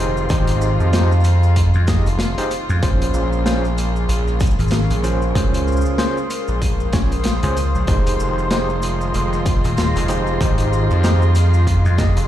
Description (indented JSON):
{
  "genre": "glitch hop",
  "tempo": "95 BPM",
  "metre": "4/4",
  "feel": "swing 58% on 16ths",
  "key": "F minor",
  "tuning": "A4 = 440 Hz",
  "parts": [
    { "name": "dark chamber string section", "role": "sustained chords", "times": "0.0-12.3 s", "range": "Db3 to C5", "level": "-26 LUFS", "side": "left 1 dB", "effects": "vintage 12-bit sampler grit, sidechain pumping" },
    { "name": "overdriven tine electric piano", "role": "stabs", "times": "0.0-12.2 s", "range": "Db4 to Eb5", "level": "-25 LUFS", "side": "right 1 dB", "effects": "fast tremolo, sidechain pumping, tape echo" },
    { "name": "gritty driven synth bass", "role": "bass", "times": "0.0-12.3 s", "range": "F1 to F2", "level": "-17 LUFS", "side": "equal", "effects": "tube saturation" },
    { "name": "warbly tape-like pad", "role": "texture", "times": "0.0-12.3 s", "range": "F4 to Eb5", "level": "-28 LUFS", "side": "equal", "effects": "chorus, built-in reverb, sidechain pumping" },
    { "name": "crunchy breakbeat drum kit", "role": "drums", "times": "0.2-12.3 s", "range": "hi-hat, rim click, shaker, snare drum", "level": "-25 LUFS", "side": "left 1 dB", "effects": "none" },
    { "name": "vintage slap bass", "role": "bass", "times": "0.3-12.1 s", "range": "Eb1 to F2", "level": "-18 LUFS", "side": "equal", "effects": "none" },
    { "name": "electronic kick drum", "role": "drums", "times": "0.3-12.1 s", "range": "none", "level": "-19 LUFS", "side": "equal", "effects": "none" }
  ],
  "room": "little or no reverb",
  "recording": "played on a big sound system in a bare room, large studio reverb",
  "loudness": "-15 LUFS",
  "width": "side -12 dB against mid",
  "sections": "0.0-12.3 A section",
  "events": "none",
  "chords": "0.0 Fm7; 2.8 Bbm7; 7.9 Fm7"
}